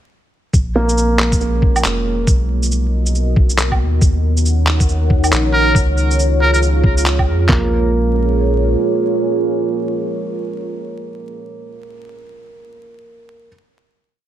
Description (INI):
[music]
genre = future garage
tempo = 138 BPM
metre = 4/4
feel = swing 61% on 16ths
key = Bb phrygian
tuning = A4 = 440 Hz
[part]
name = deep dark ambient pad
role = sustained chords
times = 1.3-11.7 s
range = Bb3 to Gb5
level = -20 LUFS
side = right 1 dB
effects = chorus, built-in reverb, sidechain pumping
[part]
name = soft dub sub bass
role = bass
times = 0.5-8.8 s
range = F1 to F2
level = -16 LUFS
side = equal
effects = sidechain pumping
[part]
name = electronic shaker, handclaps and woodblock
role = drums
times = 0.5-7.3 s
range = none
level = -20 LUFS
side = right 1 dB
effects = studio ambience
[part]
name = lo-fi sampler-style drum kit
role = drums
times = 0.5-7.6 s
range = handclaps, kick drum, toms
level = -14 LUFS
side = equal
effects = studio ambience
[part]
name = dark upright piano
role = accompaniment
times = 0.8-2.3, 7.5-13.5 s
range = Bb3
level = -22 LUFS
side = right 2 dB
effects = sidechain pumping, digital delay
[part]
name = trumpet with metal mute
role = melody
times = 5.5-6.6 s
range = Bb4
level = -19 LUFS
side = equal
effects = tape echo
[sound]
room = light reverb, digital ambience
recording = vinyl crackle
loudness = -13 LUFS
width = side -12 dB against mid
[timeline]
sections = 0.5-7.5 groove; 7.5-11.0 final chord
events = none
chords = 0.5 Bbm7; 2.3 Bmaj7; 4.0 Ebm7; 5.8 Db; 7.5 Bbm7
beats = | 0.54 0.97 1.41 1.84 | 2.27 2.71 3.14 3.58 | 4.01 4.45 4.88 5.32 | 5.75 6.19 6.62 7.06 | 7.49 7.93 8.36 8.80 | 9.23 9.66 10.10 10.54